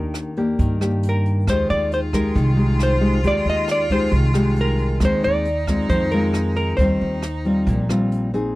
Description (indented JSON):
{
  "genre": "bossa nova",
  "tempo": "136 BPM",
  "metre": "4/4",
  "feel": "straight",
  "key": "Eb major",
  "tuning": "A4 = 440 Hz",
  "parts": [
    { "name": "hollow-body jazz guitar", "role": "melody", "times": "0.0-8.1 s", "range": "Bb4 to Eb5", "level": "-23 LUFS", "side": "equal", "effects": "none" },
    { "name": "nylon-string guitar", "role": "accompaniment", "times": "0.0-8.6 s", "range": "Bb2 to Ab4", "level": "-22 LUFS", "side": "left 1 dB", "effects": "none" },
    { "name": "upright bass", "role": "bass", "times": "0.0-8.5 s", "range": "Bb1 to G2", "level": "-21 LUFS", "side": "equal", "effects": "none" },
    { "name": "jazz brush drum kit", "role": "drums", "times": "0.1-8.4 s", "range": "hi-hat, kick drum, rim click", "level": "-26 LUFS", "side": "right 1 dB", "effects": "none" },
    { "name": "clear cello", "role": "second line", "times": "1.5-8.3 s", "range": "Eb4 to F4", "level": "-30 LUFS", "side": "equal", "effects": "none" }
  ],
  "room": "little or no reverb",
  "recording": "dry, close 1970s-style studio recording",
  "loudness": "-17 LUFS",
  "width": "side -19 dB against mid",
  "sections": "0.0-8.6 A section",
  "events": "none",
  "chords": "0.0 Ebmaj7; 1.5 Fm9; 5.0 Bb9sus4/Eb; 6.8 Eb69",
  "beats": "0.15 0.59 1.03 | 1.48 1.92 2.36 2.81 | 3.25 3.69 4.14 4.58 | 5.02 5.46 5.91 6.35 | 6.79 7.23 7.68 8.12"
}